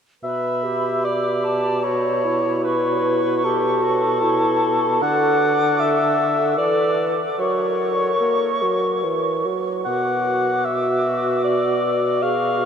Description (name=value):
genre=classical, slow romantic movement for symphony orchestra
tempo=75 BPM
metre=3/4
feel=rubato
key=B minor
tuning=A4 = 440 Hz
part: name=mellow cor anglais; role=second line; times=0.2-12.7 s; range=A4 to F#5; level=-21 LUFS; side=left 2 dB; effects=none
part: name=silver concert flute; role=second line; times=0.2-12.7 s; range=A5 to D6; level=-27 LUFS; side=right 4 dB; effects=none
part: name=warm clarinet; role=second line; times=0.2-12.7 s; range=E4 to B4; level=-24 LUFS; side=equal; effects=none
part: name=dark bassoon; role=accompaniment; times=0.2-12.7 s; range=B2 to A#3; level=-24 LUFS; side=right 2 dB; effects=none
room=wet huge ambient reverb, RT60 9.0 s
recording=in a vast, echoing space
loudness=-18 LUFS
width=side -7 dB against mid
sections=0.2-12.7 A section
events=none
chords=0.2 Bm; 5.0 D; 7.4 F#; 9.8 Bm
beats=| 0.24 1.05 1.85 | 2.65 3.44 4.22 | 5.02 5.79 6.57 | 7.39 8.21 9.02 | 9.84 10.64 11.44 | 12.23